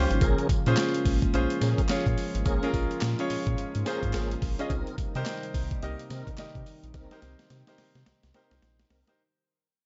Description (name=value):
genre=R&B, new jack swing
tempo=107 BPM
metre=4/4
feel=swing 61% on 16ths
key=Bb dorian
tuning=A4 = 440 Hz
part: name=clear concert grand piano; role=accompaniment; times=0.0-9.2 s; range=Db4 to Eb5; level=-34 LUFS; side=equal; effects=none
part: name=warm analog pad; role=sustained chords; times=0.0-9.2 s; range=C3 to F4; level=-38 LUFS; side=equal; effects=chorus
part: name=tonewheel organ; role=stabs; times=0.0-9.1 s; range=C4 to Bb4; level=-38 LUFS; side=equal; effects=overdrive, chorus vibrato, slow rotary speaker
part: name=round analog bass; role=bass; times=0.0-9.0 s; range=Ab1 to C3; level=-32 LUFS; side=equal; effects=none
part: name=boom bap sampler-style drum kit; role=drums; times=0.1-9.2 s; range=handclaps, hi-hat, kick drum, snare drum, tambourine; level=-32 LUFS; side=equal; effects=none
part: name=tube shaker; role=percussion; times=0.1-9.2 s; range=none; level=-58 LUFS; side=equal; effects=none
room=light reverb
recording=nothing above 7.7 kHz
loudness=-28 LUFS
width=mono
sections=0.2-9.2 A section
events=fade-out 0.2-9.2; drum fill 6.9-9.2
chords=0.2 Bbm7; 4.7 Cm7